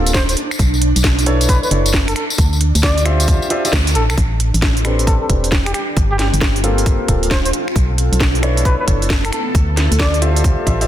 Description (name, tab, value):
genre	UK garage, two-step garage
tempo	134 BPM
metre	4/4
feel	swing 65% on 16ths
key	A minor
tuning	A4 = 445 Hz
part	ethereal airy pad	sustained chords	0.0-4.2 s	D4	-27 LUFS	right 4 dB	ensemble chorus, built-in reverb, sidechain pumping
part	dark baby grand piano	stabs	0.0-10.9 s	Bb3 to E5	-22 LUFS	left 1 dB	low-pass filter, tape echo
part	organ-like FM bass	bass	0.0-10.9 s	D1 to D2	-16 LUFS	equal	sidechain pumping
part	trumpet with bucket mute	melody	0.1-10.2 s	G4 to D5	-25 LUFS	equal	tape echo
part	electronic kick drum	drums	0.1-10.8 s	none	-17 LUFS	equal	none
part	garage drum kit	drums	0.1-10.9 s	finger snaps, hi-hat, snare drum, tambourine	-20 LUFS	equal	none
part	granular cloud pad	texture	5.3-10.9 s	B3 to A4	-26 LUFS	equal	built-in reverb, sidechain pumping
room	little or no reverb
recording	dense, heavily limited modern master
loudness	-13 LUFS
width	side -12 dB against mid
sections	0.0-4.2 A section; 4.2-10.9 B section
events	drop 0.0-4.2; band accent 3.7; filter sweep on grand piano 4.2-10.9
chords	0.4 Bm11; 2.2 Dm11; 4.2 Am11; 5.7 Gm11; 7.5 Bm11; 9.3 Dm11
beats	0.14 | 0.59 1.04 1.49 1.94 | 2.38 2.83 3.28 3.73 | 4.17 4.62 5.07 5.52 | 5.96 6.41 6.86 7.31 | 7.76 8.20 8.65 9.10 | 9.55 9.99 10.44